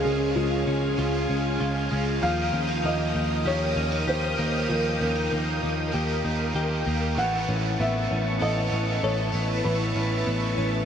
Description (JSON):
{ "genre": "dream pop", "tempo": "97 BPM", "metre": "4/4", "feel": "straight", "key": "unclear", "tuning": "A4 = 440 Hz", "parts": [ { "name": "felt-muted upright piano", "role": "melody", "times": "0.0-10.8 s", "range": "F4 to Gb5", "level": "-30 LUFS", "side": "equal", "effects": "diffuse ambient delay" }, { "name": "biting overdriven guitar", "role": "accompaniment", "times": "0.0-10.8 s", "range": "Db3 to C#5", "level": "-33 LUFS", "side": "right 4 dB", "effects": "harmonic tremolo, wide subtle chorus" }, { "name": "ensemble organ-string", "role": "sustained chords", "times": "0.0-10.8 s", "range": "Db4 to Eb6", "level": "-30 LUFS", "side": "equal", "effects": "ensemble chorus" }, { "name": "direct-recorded clean electric guitar", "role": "arpeggios", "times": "0.0-10.8 s", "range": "E3 to A4", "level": "-30 LUFS", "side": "left 2 dB", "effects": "analog chorus, diffuse ambient delay" }, { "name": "vintage muted picked electric bass", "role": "bass", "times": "0.0-10.8 s", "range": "A1 to Eb2", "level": "-27 LUFS", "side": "equal", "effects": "none" } ], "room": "wet huge ambient reverb, RT60 7.3 s", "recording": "dreamy mix soaked in reverb", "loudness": "-23 LUFS", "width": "side -8 dB against mid", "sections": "0.0-10.8 A section", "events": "none", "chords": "0.0 Db; 2.2 Ebadd9; 7.2 Aadd9" }